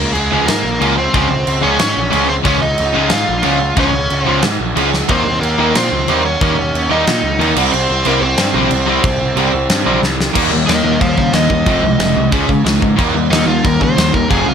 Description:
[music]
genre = punk rock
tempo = 182 BPM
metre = 4/4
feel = straight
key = unclear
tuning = A4 = 444 Hz
[part]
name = overdriven electric guitar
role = melody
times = 0.0-14.5 s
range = Ab3 to F5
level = -17 LUFS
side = equal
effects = none
[part]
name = fuzz picked electric bass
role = bass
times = 0.0-14.5 s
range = F1 to Db3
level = -19 LUFS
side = equal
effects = overdrive
[part]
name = big rock drum kit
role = drums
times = 0.2-14.4 s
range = crash cymbal, kick drum, snare drum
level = -17 LUFS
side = right 1 dB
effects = none
[part]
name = cranked stack guitar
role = riff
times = 0.3-14.5 s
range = F2 to F4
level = -18 LUFS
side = right 11 dB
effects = overdrive
[part]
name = distorted electric guitar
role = riff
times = 0.3-14.5 s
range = F2 to Eb4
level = -18 LUFS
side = left 13 dB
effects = distortion
[sound]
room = light reverb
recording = none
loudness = -12 LUFS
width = side -7 dB against mid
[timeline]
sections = 0.0-10.4 A section; 10.4-14.5 B section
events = half time 0.0-10.4; drum fill 4.9, 10.0-10.4; overdriven electric guitar solo 10.4-14.5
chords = 0.0 Db; 5.1 Eb; 7.6 C; 10.4 Eb; 11.7 Fm; 12.3 Db5; 13.0 Eb

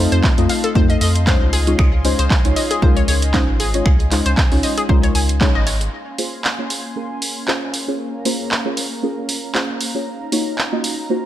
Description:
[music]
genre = deep house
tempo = 116 BPM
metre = 4/4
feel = swing 55% on 16ths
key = Bb minor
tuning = A4 = 440 Hz
[part]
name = warm analog pad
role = sustained chords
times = 0.0-11.3 s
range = Bb3 to C6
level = -29 LUFS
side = equal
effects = chorus, tremolo, sidechain pumping
[part]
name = deep mellow chord stab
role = stabs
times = 0.0-11.3 s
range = Ab3 to Eb5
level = -22 LUFS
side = left 1 dB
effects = chorus, sidechain pumping, tape echo
[part]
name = round analog bass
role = bass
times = 0.0-5.9 s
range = Ab1 to F2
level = -18 LUFS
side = equal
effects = tube saturation, sidechain pumping
[part]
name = analog pluck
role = arpeggios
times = 0.1-5.7 s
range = Ab4 to Ab5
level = -25 LUFS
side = left 3 dB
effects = chorus, sidechain pumping, digital delay
[part]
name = punchy analog drum machine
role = drums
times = 0.1-11.0 s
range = finger snaps, handclaps, hi-hat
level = -22 LUFS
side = right 1 dB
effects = none
[part]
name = electronic kick drum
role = drums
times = 0.2-5.5 s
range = none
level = -17 LUFS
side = equal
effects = none
[sound]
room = light reverb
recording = none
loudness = -15 LUFS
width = side -12 dB against mid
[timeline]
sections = 0.0-5.9 A section; 5.9-11.3 B section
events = band accent 5.4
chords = 0.0 F7; 1.5 Dbmaj9; 5.9 Bbm9; 10.1 Ebm9

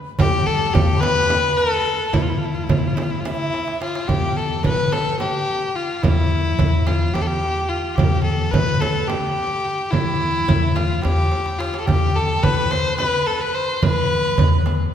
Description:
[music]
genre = Turkish makam ensemble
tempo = 216 BPM (eighths)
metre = 7/8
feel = straight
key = E makam kurdi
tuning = A4 = 440 Hz
[part]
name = clear kamancheh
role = melody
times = 0.2-14.7 s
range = E4 to C5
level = -21 LUFS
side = left 2 dB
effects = none
[part]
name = breathy bright alto ocarina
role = second line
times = 0.2-3.8, 11.9-14.6 s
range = E5 to C6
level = -31 LUFS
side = right 4 dB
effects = none
[part]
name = upright bass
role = bass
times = 0.2-14.9 s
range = E2 to E3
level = -22 LUFS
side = equal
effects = none
[part]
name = darbuka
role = percussion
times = 0.2-14.8 s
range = none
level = -24 LUFS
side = right 1 dB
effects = none
[part]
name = frame drum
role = percussion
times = 0.2-14.8 s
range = none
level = -26 LUFS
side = right 3 dB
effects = none
[sound]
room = wet concert hall reverb, RT60 2.2 s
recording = recorded in a church or concert hall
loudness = -17 LUFS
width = side -9 dB against mid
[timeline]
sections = 0.0-4.1 A section; 4.1-14.9 B section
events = drum fill 3.5-4.1, 11.3-11.9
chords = none

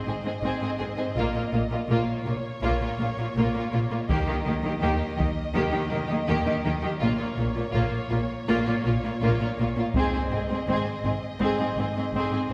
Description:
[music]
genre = cinematic, epic orchestral film score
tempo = 82 BPM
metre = 4/4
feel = straight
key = Bb dorian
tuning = A4 = 440 Hz
[part]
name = warm symphonic violin section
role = melody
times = 0.0-12.5 s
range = Db5 to Eb5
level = -38 LUFS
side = equal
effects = none
[part]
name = warm symphonic violin section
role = second line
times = 0.1-12.4 s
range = F4 to Ab4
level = -34 LUFS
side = equal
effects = none
[part]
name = rich symphonic viola section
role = accompaniment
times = 0.1-12.4 s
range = Bb3 to C4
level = -32 LUFS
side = equal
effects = none
[part]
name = clear symphonic cello section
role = bass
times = 0.1-12.5 s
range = Ab2 to Eb3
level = -33 LUFS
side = equal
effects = none
[part]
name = rich symphonic double bass section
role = bass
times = 0.1-12.5 s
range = Ab1 to Eb2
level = -32 LUFS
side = equal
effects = none
[part]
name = solo taiko drums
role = drums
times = 4.1-5.5, 9.9-11.4 s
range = none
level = -33 LUFS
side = equal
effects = none
[sound]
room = wet scoring stage reverb, RT60 1.6 s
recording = heard from further back in the room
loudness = -26 LUFS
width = mono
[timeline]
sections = 0.0-12.5 A section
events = build-up 0.0-12.5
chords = 0.0 Ab; 1.2 Bbm; 4.1 Eb; 7.0 Bbm; 10.0 Ab

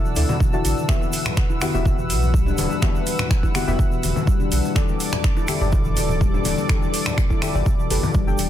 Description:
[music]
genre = afro house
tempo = 124 BPM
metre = 4/4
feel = straight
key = E minor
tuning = A4 = 440 Hz
[part]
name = warm analog pad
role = sustained chords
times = 0.0-8.5 s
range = A4 to E6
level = -29 LUFS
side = right 1 dB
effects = chorus, sidechain pumping
[part]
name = handpan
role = arpeggios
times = 0.0-8.5 s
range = B2 to E4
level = -26 LUFS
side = left 4 dB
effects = sidechain pumping, tape echo
[part]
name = deep mellow chord stab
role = stabs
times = 0.0-8.5 s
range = B3 to A5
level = -29 LUFS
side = left 3 dB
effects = chorus, sidechain pumping, tape echo
[part]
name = egg shaker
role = percussion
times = 0.1-8.5 s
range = none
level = -36 LUFS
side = right 1 dB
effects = none
[part]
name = warm sub bass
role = bass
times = 0.2-8.5 s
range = D1 to D2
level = -23 LUFS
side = right 1 dB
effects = sidechain pumping
[part]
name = afro-pop drum kit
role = drums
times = 0.2-8.5 s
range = finger snaps, hi-hat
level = -28 LUFS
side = right 2 dB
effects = overdrive, soft clipping on snare
[part]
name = congas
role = percussion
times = 0.2-8.4 s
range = none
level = -28 LUFS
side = left 2 dB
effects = none
[part]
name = electronic kick drum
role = drums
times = 0.4-8.2 s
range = none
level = -20 LUFS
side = equal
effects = overdrive
[sound]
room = little or no reverb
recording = dense, heavily limited modern master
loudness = -18 LUFS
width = side -11 dB against mid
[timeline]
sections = 0.0-8.5 A section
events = none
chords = 0.0 Dadd9; 0.9 Emadd9; 4.8 Gsus2

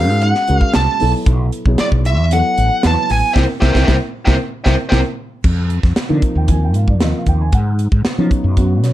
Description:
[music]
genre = electric jazz fusion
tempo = 115 BPM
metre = 4/4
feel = straight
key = unclear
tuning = A4 = 440 Hz
[part]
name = smooth overdriven lead guitar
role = melody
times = 0.0-5.0 s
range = C5 to A5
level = -17 LUFS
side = right 1 dB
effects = none
[part]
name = dark concert grand piano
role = accompaniment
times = 0.0-8.9 s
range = C3 to Ab5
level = -21 LUFS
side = equal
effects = none
[part]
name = mellow fretless electric bass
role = bass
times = 0.0-8.9 s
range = A1 to F3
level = -15 LUFS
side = equal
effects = ensemble chorus
[part]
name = crisp fusion drum kit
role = drums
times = 0.2-8.9 s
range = crash cymbal, hi-hat, kick drum, snare drum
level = -18 LUFS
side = equal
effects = none
[sound]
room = light reverb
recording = dark, warm production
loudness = -13 LUFS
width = side -14 dB against mid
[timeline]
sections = 0.0-5.4 A section; 5.4-8.9 B section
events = band accent 3.4-5.4; grand piano fill 4.7-5.4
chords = 0.0 Ebm11 (rootless); 1.0 B7sus4; 3.4 C7; 5.4 Fm7; 7.5 Abm7

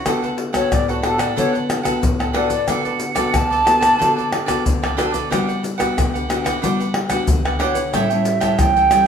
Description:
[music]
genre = samba and choro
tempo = 91 BPM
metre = 4/4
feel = straight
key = D major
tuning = A4 = 439 Hz
[part]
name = cavaquinho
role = accompaniment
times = 0.0-9.1 s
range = D4 to G5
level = -24 LUFS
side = right 5 dB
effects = none
[part]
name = nylon-string guitar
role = accompaniment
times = 0.0-9.1 s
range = A2 to A4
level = -23 LUFS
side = left 3 dB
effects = none
[part]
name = maracas, surdo, pandeiro and tamborim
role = percussion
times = 0.1-9.1 s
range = none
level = -21 LUFS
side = left 1 dB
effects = none
[part]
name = breathy mellow silver concert flute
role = melody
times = 0.5-9.1 s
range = F#4 to A5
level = -18 LUFS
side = right 2 dB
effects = none
[sound]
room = wet large studio reverb, RT60 1.1 s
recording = band playing live in one room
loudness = -16 LUFS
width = side -7 dB against mid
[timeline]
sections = 0.1-9.1 A section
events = flute solo 0.1-9.1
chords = 0.1 D6; 2.7 Bm7/D; 5.3 Gmaj7; 7.9 A7

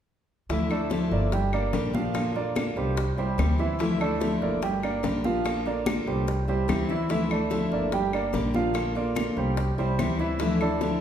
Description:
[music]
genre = latin, Cuban son and guajira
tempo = 145 BPM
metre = 4/4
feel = straight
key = D minor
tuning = A4 = 440 Hz
[part]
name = picked steel-string acoustic guitar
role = accompaniment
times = 0.5-11.0 s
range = C3 to G4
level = -29 LUFS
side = left 3 dB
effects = none
[part]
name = warm grand piano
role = arpeggios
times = 0.5-11.0 s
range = E3 to G5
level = -28 LUFS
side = right 4 dB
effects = none
[part]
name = upright bass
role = bass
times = 0.5-11.0 s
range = G1 to D2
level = -30 LUFS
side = equal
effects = none
[part]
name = bongos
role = percussion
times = 0.5-11.0 s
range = none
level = -36 LUFS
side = left 5 dB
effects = none
[part]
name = congas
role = percussion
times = 0.5-11.0 s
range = none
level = -35 LUFS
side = left 1 dB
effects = none
[part]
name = claves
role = percussion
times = 0.7-10.8 s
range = none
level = -39 LUFS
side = left 3 dB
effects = none
[sound]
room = wet recital hall reverb, RT60 1.3 s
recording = recorded in a church or concert hall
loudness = -24 LUFS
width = side -9 dB against mid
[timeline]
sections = 0.5-11.0 A section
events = none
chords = 0.5 Dmadd9; 1.3 Gm; 2.1 Bb; 3.0 C; 3.8 Dmadd9; 4.6 Gm; 5.5 Bb; 6.3 C; 7.1 Dmadd9; 7.9 Gm; 8.8 Bb; 9.6 C; 10.4 Dmadd9

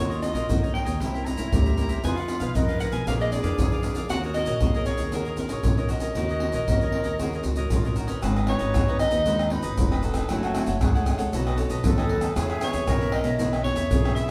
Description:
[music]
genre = samba and choro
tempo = 116 BPM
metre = 4/4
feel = straight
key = Eb minor, G# minor from 8.2 s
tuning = A4 = 440 Hz
[part]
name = warm soprano saxophone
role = melody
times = 0.0-14.3 s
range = A4 to Bb5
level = -32 LUFS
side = equal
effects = none
[part]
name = breathy hollow jazz flute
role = second line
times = 0.0-14.3 s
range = Eb4 to Bb4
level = -36 LUFS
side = equal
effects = none
[part]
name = cavaquinho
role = accompaniment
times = 0.0-14.3 s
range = Eb4 to F#5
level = -38 LUFS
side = equal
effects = none
[part]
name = nylon-string guitar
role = accompaniment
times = 0.0-14.3 s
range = Bb2 to C#5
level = -35 LUFS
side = equal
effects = none
[part]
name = upright bass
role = bass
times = 0.0-14.3 s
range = E#1 to Cb3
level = -31 LUFS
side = equal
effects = none
[part]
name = tube shaker, pandeiro, surdo and tamborim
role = percussion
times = 0.1-14.3 s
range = none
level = -28 LUFS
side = equal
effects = none
[sound]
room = wet studio reverb, RT60 0.9 s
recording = band playing live in one room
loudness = -25 LUFS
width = mono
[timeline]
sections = 0.0-8.2 A section; 8.2-14.3 B section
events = none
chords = 0.0 Ebm7; 1.0 C7b9; 2.0 Fm7b5; 3.1 Bb7b9; 4.1 Ebm7; 8.2 G#m7; 10.3 F#m9; 11.3 B9; 12.4 E6

